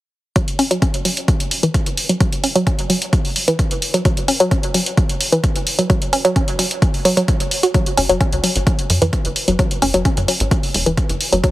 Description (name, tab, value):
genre	driving peak-time techno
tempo	130 BPM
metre	4/4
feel	straight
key	F# minor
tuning	A4 = 438 Hz
part	woody wave-folded pluck	riff	0.4-11.5 s	E3 to F#4	-19 LUFS	equal	chorus, sidechain pumping, dub echo
part	electronic hi-hat	drums	0.4-11.5 s	none	-21 LUFS	equal	overdrive, sidechain pumping on hats
part	electronic kick drum	drums	0.4-11.5 s	none	-17 LUFS	equal	overdrive
part	tight sequencer bass	bass	8.0-11.4 s	E1 to F#2	-20 LUFS	equal	sidechain pumping
room	light reverb, digital ambience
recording	heavily compressed radio sound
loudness	-15 LUFS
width	side -16 dB against mid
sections	0.4-11.5 A section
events	filter sweep on synth arpeggio sound 0.4-11.5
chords	none